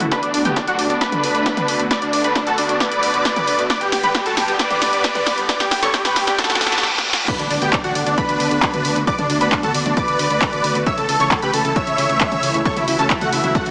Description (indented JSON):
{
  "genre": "uplifting trance",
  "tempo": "134 BPM",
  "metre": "4/4",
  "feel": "straight",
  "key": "D major",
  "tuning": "A4 = 440 Hz",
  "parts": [
    { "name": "dense compressed supersaw", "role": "melody", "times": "0.0-13.7 s", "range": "A3 to E5", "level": "-22 LUFS", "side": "equal", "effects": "sidechain pumping, low-pass filter, dub echo" },
    { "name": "unison pluck", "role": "second line", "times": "0.0-13.7 s", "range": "D5 to E6", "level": "-27 LUFS", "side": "equal", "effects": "sidechain pumping" },
    { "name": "lush unison pad", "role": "sustained chords", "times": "0.0-13.7 s", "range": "C#3 to G4", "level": "-29 LUFS", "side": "equal", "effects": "chorus, phaser, sidechain pumping" },
    { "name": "solid FM bass", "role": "bass", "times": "0.0-13.7 s", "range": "G1 to G2", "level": "-31 LUFS", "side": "equal", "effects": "sidechain pumping, high-pass filter" },
    { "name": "punchy analog drum machine", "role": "drums", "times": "0.0-13.7 s", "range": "crash cymbal, handclaps, hi-hat, snare drum, toms", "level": "-24 LUFS", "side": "equal", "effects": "none" },
    { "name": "riser, reverse cymbal and impact", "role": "sound effects", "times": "0.3-9.1 s", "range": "none", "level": "-30 LUFS", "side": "equal", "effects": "none" },
    { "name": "electronic kick drum", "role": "drums", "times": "0.1-13.6 s", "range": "none", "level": "-26 LUFS", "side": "equal", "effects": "high-pass filter on kick" }
  ],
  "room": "moderate huge ambient reverb, RT60 4.0 s",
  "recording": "high-pass filter, small speaker sound",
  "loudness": "-18 LUFS",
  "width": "mono",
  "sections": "0.0-7.3 A section; 7.3-13.7 B section",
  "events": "build-up 0.0-7.3; filter sweep on synth pluck 0.0-7.3; filter sweep 0.0-7.3; drum fill 0.1-6.8, 6.8-7.3; reverse cymbal 6.4-7.3; drop 7.3-13.7; impact 7.3-9.1",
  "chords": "0.1 D6; 3.7 G; 7.3 D6; 10.9 A/C#",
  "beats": "| 0.12 0.56 1.01 1.46 | 1.91 2.36 2.80 3.25 | 3.70 4.15 4.59 5.04 | 5.49 5.94 6.39 6.83 | 7.28 7.73 8.18 8.62 | 9.07 9.52 9.97 10.42 | 10.86 11.31 11.76 12.21 | 12.65 13.10 13.55"
}